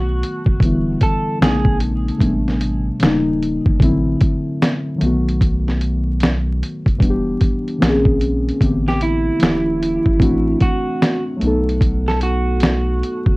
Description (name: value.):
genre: lo-fi hip hop.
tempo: 75 BPM.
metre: 4/4.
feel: swing 64% on 16ths.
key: unclear.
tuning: A4 = 440 Hz.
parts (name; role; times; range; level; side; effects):
electric guitar through a small old amp; melody; 0.0-1.8, 8.9-13.4 s; E4 to A4; -22 LUFS; right 2 dB; tape echo.
muted felt-like synth keys; accompaniment; 0.0-13.4 s; C3 to A4; -19 LUFS; left 1 dB; chorus, cassette tape.
soft dub sub bass; bass; 0.0-13.4 s; D#1 to B1; -21 LUFS; equal; none.
dusty soul sampler-style drum kit; drums; 0.2-13.4 s; hi-hat, kick drum, snare drum; -17 LUFS; equal; overdrive.
room: moderate studio reverb, RT60 0.5 s.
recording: worn, warbling old tape, cassette tape, vinyl crackle, warbly pitch drift.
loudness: -15 LUFS.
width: side -23 dB against mid.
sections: 0.0-13.4 A section.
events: none.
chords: 0.0 B7; 0.6 Em7; 1.4 Bbm11; 2.2 Am11; 3.0 D#9; 3.8 D9/A; 5.0 B7; 7.0 Em7; 7.8 Bbm11; 8.6 Am11; 9.4 D#9; 10.2 D9/A; 11.4 B7.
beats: 0.61 1.41 | 2.21 3.01 3.81 4.61 | 5.41 6.21 7.01 7.81 | 8.61 9.41 10.21 11.01 | 11.81 12.61.